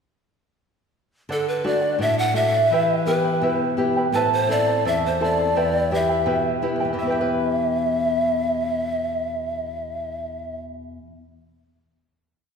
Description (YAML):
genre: andean folk, Andean ensemble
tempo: 84 BPM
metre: 2/4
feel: straight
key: E minor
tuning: A4 = 440 Hz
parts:
  - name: breathy mellow pan flute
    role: melody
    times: 1.3-10.6 s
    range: A4 to F#5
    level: -22 LUFS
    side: equal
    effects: none
  - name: charango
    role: accompaniment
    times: 1.3-11.3 s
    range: E4 to A5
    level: -25 LUFS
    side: right 3 dB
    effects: none
  - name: nylon-string guitar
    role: accompaniment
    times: 1.3-11.4 s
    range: E2 to B4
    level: -25 LUFS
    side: left 2 dB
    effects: none
room: wet scoring stage reverb, RT60 1.5 s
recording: recorded in a church or concert hall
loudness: -19 LUFS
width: side -6 dB against mid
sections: 1.3-7.0 A section; 7.0-9.8 final chord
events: none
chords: 1.3 D; 2.7 Em; 4.1 Am; 5.6 Em